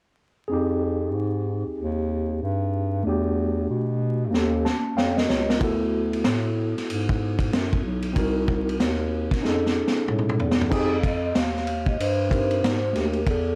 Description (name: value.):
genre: hip hop, jazz-hop.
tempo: 94 BPM.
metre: 4/4.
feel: swing 62% on 16ths.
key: unclear.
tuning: A4 = 440 Hz.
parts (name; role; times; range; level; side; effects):
tine electric piano; accompaniment; 0.5-13.2 s; A3 to A5; -29 LUFS; equal; none.
dark bass clarinet; bass; 0.5-13.6 s; B1 to B2; -28 LUFS; equal; none.
vintage drum kit; drums; 4.3-13.5 s; crash cymbal, hi-hat, kick drum, ride cymbal, snare drum, toms; -28 LUFS; equal; none.
vibraphone with soft mallets; melody; 11.0-13.6 s; A4 to F5; -29 LUFS; equal; none.
room: light reverb.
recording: dry, gritty hardware recording, vinyl crackle.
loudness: -24 LUFS.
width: mono.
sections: 0.5-10.7 A section; 10.7-13.6 B section.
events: drum fill 4.3-5.6, 9.4-10.7; tine electric piano fill 4.3-5.6.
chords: 0.5 Fm9; 3.1 Em11; 4.3 Eb7#11; 5.6 D6; 8.2 Cm7b5; 9.4 F7alt; 10.7 Fm9.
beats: | 0.50 1.14 1.78 2.42 | 3.06 3.69 4.33 4.97 | 5.61 6.25 6.89 7.52 | 8.16 8.80 9.44 10.08 | 10.71 11.35 11.99 12.63 | 13.27.